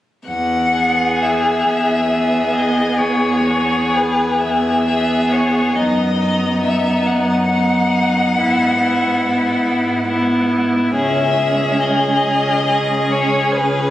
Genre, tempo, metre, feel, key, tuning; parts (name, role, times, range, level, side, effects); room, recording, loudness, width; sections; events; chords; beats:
classical, slow romantic movement for string quartet; 40-47 BPM (dotted quarters); 12/8; rubato; E major; A4 = 440 Hz
rich violin; melody; 0.3-13.9 s; B4 to F#5; -20 LUFS; left 3 dB
rich cello; bass; 0.3-13.9 s; C#2 to G#2; -22 LUFS; right 1 dB
rich violin; second line; 0.7-13.9 s; D#4 to G#4; -19 LUFS; equal
rich viola; accompaniment; 0.8-13.9 s; B3 to C#4; -19 LUFS; equal
moderate scoring stage reverb, RT60 2.1 s; recorded on a phone in the room, club reverb, compression; -14 LUFS; side -13 dB against mid
0.3-13.9 A section
0.3 E; 5.8 B/F#; 8.4 E/G#; 10.9 C#m
| 0.28 1.65 3.00 4.45 | 5.77 7.08 8.38 9.66 | 10.94 12.26 13.54